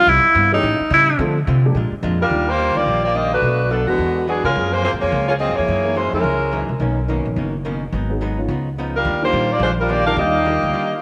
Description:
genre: jazz, big band swing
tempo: 214 BPM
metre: 4/4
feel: swing 61% on 8ths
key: unclear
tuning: A4 = 440 Hz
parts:
  - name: warm tenor saxophone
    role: melody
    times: 0.0-1.2 s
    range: Eb4 to F4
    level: -16 LUFS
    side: equal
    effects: none
  - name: dark upright piano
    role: accompaniment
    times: 0.0-10.9 s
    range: D3 to A#4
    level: -30 LUFS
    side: equal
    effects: none
  - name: archtop guitar, miked and amplified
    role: accompaniment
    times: 0.1-10.9 s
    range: Gb2 to F#4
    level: -30 LUFS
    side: equal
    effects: none
  - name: upright bass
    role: bass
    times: 0.1-10.7 s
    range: F#1 to D3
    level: -24 LUFS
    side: equal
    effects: tube saturation
  - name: mellow saxophone section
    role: melody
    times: 2.2-6.7, 9.0-11.0 s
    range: D3 to F5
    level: -20 LUFS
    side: equal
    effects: tape echo
  - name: mellow trombone section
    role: second line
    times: 10.2-11.0 s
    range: G3 to Eb4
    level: -28 LUFS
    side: equal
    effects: none
room: moderate echo chamber reverb, RT60 2.3 s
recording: none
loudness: -18 LUFS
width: mono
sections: 0.0-2.3 A section; 2.3-11.0 B section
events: tenor saxophone solo 0.0-2.3; break 10.7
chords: 0.1 Cmaj7; 0.6 A7; 1.2 Dm7; 1.7 Bb7; 2.3 Ebmaj9; 3.4 Bm7; 4.0 E9; 4.6 Gbmaj9#11; 5.7 Gb13; 6.8 Bmaj9; 7.9 Abm7; 8.5 Db9; 9.1 Ebmaj9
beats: | 0.07 0.35 0.63 0.91 | 1.19 1.47 1.75 2.03 | 2.31 2.59 2.87 3.15 | 3.43 3.71 4.00 4.28 | 4.56 4.84 5.12 5.40 | 5.68 5.96 6.25 6.53 | 6.81 7.09 7.37 7.65 | 7.93 8.21 8.49 8.78 | 9.06 9.34 9.62 9.90 | 10.18 10.46 10.74

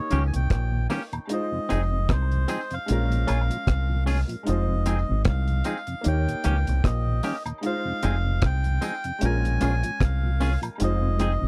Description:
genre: lovers rock reggae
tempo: 76 BPM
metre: 4/4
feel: swing 57% on 16ths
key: F minor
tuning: A4 = 440 Hz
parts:
  - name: melodica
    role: melody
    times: 0.0-11.5 s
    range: C5 to Ab5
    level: -34 LUFS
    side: equal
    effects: tape echo
  - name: clear grand piano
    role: accompaniment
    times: 0.0-11.5 s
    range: Ab3 to Db5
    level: -35 LUFS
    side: equal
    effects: slapback echo
  - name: mellow tonewheel organ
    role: accompaniment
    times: 0.1-11.5 s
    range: Eb2 to Eb4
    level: -34 LUFS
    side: equal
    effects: chorus vibrato, slow rotary speaker
  - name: twangy electric guitar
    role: stabs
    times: 0.1-11.3 s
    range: Bb3 to Ab4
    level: -31 LUFS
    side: equal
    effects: none
  - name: deep dub fingered electric bass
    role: bass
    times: 0.1-11.5 s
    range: F1 to Eb2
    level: -26 LUFS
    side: equal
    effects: none
  - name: deep reggae drum kit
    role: drums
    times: 0.1-11.4 s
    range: hi-hat, kick drum, rim click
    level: -28 LUFS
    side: equal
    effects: none
  - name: tambourine and woodblock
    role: percussion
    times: 0.1-11.4 s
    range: none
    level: -43 LUFS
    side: equal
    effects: slapback echo
room: little or no reverb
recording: dry, close 1970s-style studio recording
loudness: -25 LUFS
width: mono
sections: 0.0-11.5 A section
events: none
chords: 0.0 Eb7; 1.3 Fm7; 2.9 Bbm7; 4.5 Fm7; 6.0 Eb7; 7.6 Fm7; 9.2 Bbm7; 10.8 Fm7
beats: 0.51 | 1.30 2.09 2.88 3.67 | 4.46 5.26 6.05 6.84 | 7.63 8.42 9.21 10.01 | 10.80

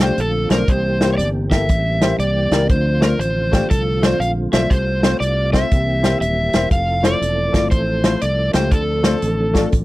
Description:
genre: uptempo gospel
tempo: 120 BPM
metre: 4/4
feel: swing 65% on 8ths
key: F major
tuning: A4 = 440 Hz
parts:
  - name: overdriven slide guitar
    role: melody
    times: 0.0-9.7 s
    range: A4 to F5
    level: -21 LUFS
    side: equal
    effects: none
  - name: warm upright piano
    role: accompaniment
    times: 0.0-9.6 s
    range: C3 to D5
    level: -23 LUFS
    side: left 4 dB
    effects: none
  - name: mellow tonewheel organ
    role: sustained chords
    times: 0.0-9.8 s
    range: D3 to A4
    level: -25 LUFS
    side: right 2 dB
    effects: fast rotary speaker, chorus vibrato
  - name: fingered electric bass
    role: bass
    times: 0.0-9.8 s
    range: Eb1 to D2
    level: -21 LUFS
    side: equal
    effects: none
  - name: warm soul drum kit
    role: drums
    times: 0.0-9.8 s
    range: hi-hat, kick drum, snare drum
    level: -17 LUFS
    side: equal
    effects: none
room: little or no reverb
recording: dry, close 1970s-style studio recording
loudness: -15 LUFS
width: side -18 dB against mid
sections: 0.0-9.8 A section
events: none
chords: 0.0 Dm7; 0.7 C7; 2.7 Dm7; 4.7 F/C; 5.7 C7; 6.7 Fmaj7; 8.7 Dm7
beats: 0.18 | 0.68 1.19 1.69 2.19 | 2.69 3.20 3.70 4.20 | 4.71 5.21 5.71 6.21 | 6.71 7.21 7.72 8.22 | 8.72 9.22 9.72

